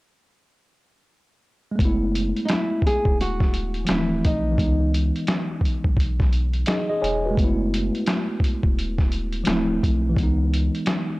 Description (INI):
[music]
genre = lo-fi hip hop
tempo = 86 BPM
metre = 4/4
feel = swing 62% on 16ths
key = F# dorian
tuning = A4 = 440 Hz
[part]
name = mellow tine electric piano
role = accompaniment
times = 1.7-11.2 s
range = E3 to G#5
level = -25 LUFS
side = equal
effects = medium stereo tremolo, cassette tape, low-pass filter
[part]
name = soft dub sub bass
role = bass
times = 1.8-10.7 s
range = D1 to C#2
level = -24 LUFS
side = equal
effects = none
[part]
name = lo-fi sampler-style drum kit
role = drums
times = 1.8-11.1 s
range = hi-hat, kick drum, snare drum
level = -22 LUFS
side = equal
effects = overdrive
[part]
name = nylon-string guitar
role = melody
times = 2.5-4.9 s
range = D#4 to G#4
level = -26 LUFS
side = equal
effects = low-pass filter
[sound]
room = light reverb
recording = dry, gritty hardware recording, transformer saturation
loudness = -20 LUFS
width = side -21 dB against mid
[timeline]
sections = 1.8-11.2 A section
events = tine electric piano fill 6.3-7.4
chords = 1.8 F#m11; 3.9 Dm9; 4.6 C#m9; 7.4 F#m11; 9.5 Dm9; 10.2 C#m9